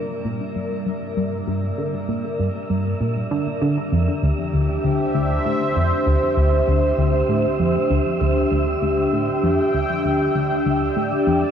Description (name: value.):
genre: ambient, sequencer-driven space music.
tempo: 98 BPM.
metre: 4/4.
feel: straight.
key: unclear.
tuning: A4 = 437 Hz.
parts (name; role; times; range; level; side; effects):
sweeping resonant pad; sustained chords; 0.0-11.5 s; G3 to G5; -21 LUFS; equal; chorus, shimmer reverb.
tight sequenced synth; riff; 0.0-11.4 s; D2 to D3; -21 LUFS; equal; chorus, phaser, ping-pong delay, shimmer reverb.
wind-like tuned noise texture; texture; 0.0-11.5 s; E5; -31 LUFS; right 2 dB; built-in reverb, shimmer reverb.
room: wet plate reverb, RT60 2.8 s.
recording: cassette tape.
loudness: -18 LUFS.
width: side -8 dB against mid.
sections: 0.0-11.5 A section.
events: fade-in on synth texture 0.0-11.5.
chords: 0.0 Gm7; 3.9 Dmadd9.